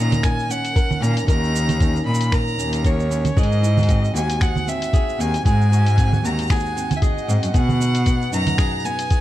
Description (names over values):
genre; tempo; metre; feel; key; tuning
folktronica; 115 BPM; 4/4; swing 56% on 16ths; unclear; A4 = 441 Hz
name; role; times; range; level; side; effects
rich violin; melody; 0.0-9.2 s; C#5 to B5; -25 LUFS; right 1 dB; plate reverb, tape echo
flamenco guitar; arpeggios; 0.0-9.2 s; G#2 to A#4; -26 LUFS; equal; none
warm cello; bass; 0.0-8.4 s; D#2 to B2; -20 LUFS; equal; none
lo-fi sampler-style drum kit; drums; 0.1-9.2 s; congas, finger snaps, hi-hat, shaker; -26 LUFS; right 3 dB; small room ambience
electronic kick drum; drums; 0.2-9.2 s; none; -18 LUFS; equal; small room ambience
flickering grainy texture; texture; 4.1-9.2 s; F#5; -36 LUFS; right 2 dB; built-in reverb, plate reverb
room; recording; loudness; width
light reverb; dark, warm production; -17 LUFS; side -14 dB against mid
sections
0.0-9.2 A section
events
none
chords
0.0 D#7(no3); 3.4 G#7; 7.5 B6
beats
0.24 0.76 | 1.28 1.80 2.33 2.85 | 3.37 3.89 4.41 4.93 | 5.46 5.98 6.50 7.02 | 7.54 8.06 8.59 9.11